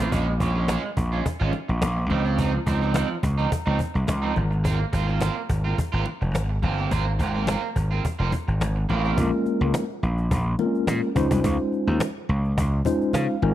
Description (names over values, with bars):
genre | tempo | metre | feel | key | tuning
early-eighties boogie funk | 106 BPM | 4/4 | straight | Bb minor | A4 = 435 Hz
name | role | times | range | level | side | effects
electric guitar at the edge of break-up | riff | 0.0-9.2 s | F3 to G4 | -28 LUFS | right 6 dB | lush chorus
gritty slap bass | bass | 0.0-13.5 s | F1 to Db3 | -23 LUFS | equal | overdrive
cajon | drums | 0.0-13.4 s | none | -29 LUFS | equal | none
congas | percussion | 0.1-13.5 s | none | -34 LUFS | left 4 dB | none
mellow tine electric piano | accompaniment | 9.2-13.5 s | Ab3 to Ab5 | -24 LUFS | left 2 dB | fast stereo tremolo
room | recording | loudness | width
light reverb, studio reverb | dark, warm production | -21 LUFS | side -13 dB against mid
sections
0.1-9.2 A section; 9.2-13.5 B section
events
tine electric piano fill 12.9-13.5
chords
0.1 Bbm7; 2.1 Dbmaj9; 4.4 Ab69; 9.2 Bbm7; 11.2 Dbmaj9